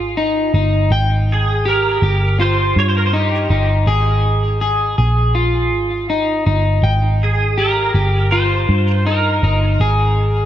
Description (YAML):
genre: dream pop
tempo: 81 BPM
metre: 4/4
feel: straight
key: Ab major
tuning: A4 = 440 Hz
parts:
  - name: electric guitar at the edge of break-up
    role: arpeggios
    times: 0.0-10.5 s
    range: Eb4 to G5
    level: -18 LUFS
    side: left 1 dB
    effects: wide subtle chorus, tape echo
  - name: vintage muted picked electric bass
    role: bass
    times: 0.0-10.5 s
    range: G1 to G2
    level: -16 LUFS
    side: equal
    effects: none
  - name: pedal steel guitar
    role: melody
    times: 1.3-9.6 s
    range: G4 to Db5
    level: -20 LUFS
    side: right 3 dB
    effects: ensemble chorus, tape echo
room: moderate plate reverb, RT60 3.1 s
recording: dreamy mix soaked in reverb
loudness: -13 LUFS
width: side -11 dB against mid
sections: 0.0-10.5 A section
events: none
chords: 0.0 Ab5; 6.8 Cm7; 9.8 Ab5